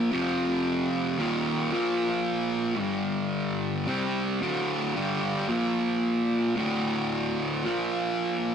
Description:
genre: metal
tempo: 56 BPM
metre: 4/4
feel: straight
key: D minor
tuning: A4 = 440 Hz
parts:
  - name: fuzz guitar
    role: solo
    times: 0.0-8.5 s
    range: D2 to C4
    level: -25 LUFS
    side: equal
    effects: distortion
room: moderate small room ambience, RT60 0.5 s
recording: rough rehearsal-room recording, tube saturation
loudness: -25 LUFS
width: side -7 dB against mid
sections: 0.0-8.5 A section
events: none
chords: 0.1 F5; 1.2 Eb5; 1.7 Bb5; 2.8 G5; 3.9 D5; 5.5 Bb5; 6.6 D5; 7.6 Bb5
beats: 0.12 1.20 | 2.27 3.34 4.41 5.49 | 6.57 7.65

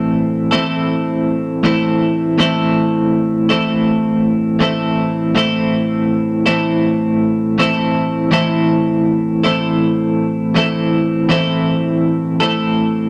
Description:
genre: rock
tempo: 81 BPM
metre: 4/4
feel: straight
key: A minor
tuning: A4 = 440 Hz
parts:
  - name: twelve-string electric guitar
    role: solo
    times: 0.0-13.1 s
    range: A2 to A4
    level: -16 LUFS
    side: equal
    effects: tremolo
room: moderate stone room reverb, RT60 1.3 s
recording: rough rehearsal-room recording, tube saturation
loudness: -16 LUFS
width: mono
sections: 0.0-13.1 A section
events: none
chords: 0.0 Am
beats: 0.15 0.89 1.64 | 2.38 3.12 3.87 4.61 | 5.36 6.10 6.84 7.59 | 8.33 9.07 9.82 10.56 | 11.30 12.05 12.79

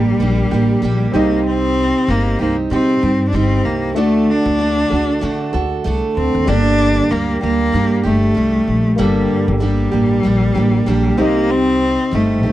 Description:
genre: acoustic pop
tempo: 96 BPM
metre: 4/4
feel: swing 55% on 16ths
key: G minor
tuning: A4 = 440 Hz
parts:
  - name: clear cello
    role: melody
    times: 0.0-12.5 s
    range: G3 to D4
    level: -18 LUFS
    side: left 2 dB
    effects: none
  - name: picked steel-string acoustic guitar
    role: accompaniment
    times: 0.0-12.5 s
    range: G2 to A4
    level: -18 LUFS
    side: right 4 dB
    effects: none
  - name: warm baby grand piano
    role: accompaniment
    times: 0.0-12.5 s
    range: G3 to Eb5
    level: -26 LUFS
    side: left 5 dB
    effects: none
  - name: upright bass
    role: bass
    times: 0.0-12.5 s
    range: G1 to D3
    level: -19 LUFS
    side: left 1 dB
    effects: none
room: light reverb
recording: dry, close 1970s-style studio recording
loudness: -13 LUFS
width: side -14 dB against mid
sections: 0.0-12.5 A section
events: none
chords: 0.0 Gm; 1.1 Cm; 4.0 D; 6.5 Gm; 11.2 Cm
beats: 0.20 0.83 | 1.45 2.08 2.71 3.34 | 3.96 4.59 5.22 5.85 | 6.47 7.10 7.73 8.36 | 8.99 9.61 10.24 10.87 | 11.50 12.13

